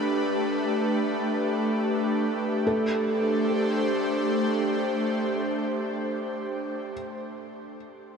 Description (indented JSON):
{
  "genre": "ambient",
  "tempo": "free time",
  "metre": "none",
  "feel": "none",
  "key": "A minor",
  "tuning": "A4 = 440 Hz",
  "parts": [
    { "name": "airy breathy pad", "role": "sustained chords", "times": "0.0-6.7 s", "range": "A3 to C5", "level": "-26 LUFS", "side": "equal", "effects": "chorus, shimmer reverb" },
    { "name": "bowed-like drone", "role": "drone", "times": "0.0-6.8 s", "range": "A3", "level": "-31 LUFS", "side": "left 1 dB", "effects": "built-in reverb" },
    { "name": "felt-muted upright piano", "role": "arpeggios", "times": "2.7-8.2 s", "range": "A4", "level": "-32 LUFS", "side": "equal", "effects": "ping-pong delay, shimmer reverb" }
  ],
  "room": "wet huge ambient reverb, RT60 7.5 s",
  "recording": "dark, warm production",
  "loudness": "-24 LUFS",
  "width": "side -6 dB against mid",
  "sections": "0.0-2.7 A section; 2.7-6.0 B section",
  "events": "none",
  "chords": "0.0 G; 2.7 Am"
}